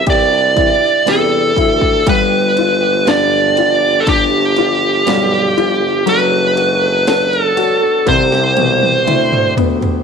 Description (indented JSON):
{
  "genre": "pop ballad",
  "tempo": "60 BPM",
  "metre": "4/4",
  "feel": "straight",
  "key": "C major",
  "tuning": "A4 = 440 Hz",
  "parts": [
    { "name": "smooth overdriven lead guitar", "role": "melody", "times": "0.0-9.5 s", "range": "G4 to D5", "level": "-13 LUFS", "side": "right 2 dB", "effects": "none" },
    { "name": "warm upright piano", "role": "accompaniment", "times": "0.0-10.0 s", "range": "B2 to A4", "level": "-18 LUFS", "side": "left 12 dB", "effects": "none" },
    { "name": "flamenco guitar", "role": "arpeggios", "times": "0.0-10.0 s", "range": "G2 to A4", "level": "-23 LUFS", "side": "right 14 dB", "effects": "none" },
    { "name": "warm tuba", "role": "bass", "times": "0.0-10.0 s", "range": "F#1 to E2", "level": "-20 LUFS", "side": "right 1 dB", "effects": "none" },
    { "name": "house drum kit", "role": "drums", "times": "0.1-10.0 s", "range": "kick drum, ride cymbal, snare drum, toms", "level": "-20 LUFS", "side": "equal", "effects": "none" }
  ],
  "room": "light reverb, studio reverb",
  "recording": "1960s-style stereo with parts hard left and right",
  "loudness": "-11 LUFS",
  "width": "side -6 dB against mid",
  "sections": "0.0-10.0 A section",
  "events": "drum fill 8.1-10.0",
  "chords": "0.0 Cadd9; 2.1 G7; 6.1 D6/F#; 8.1 Cmaj7"
}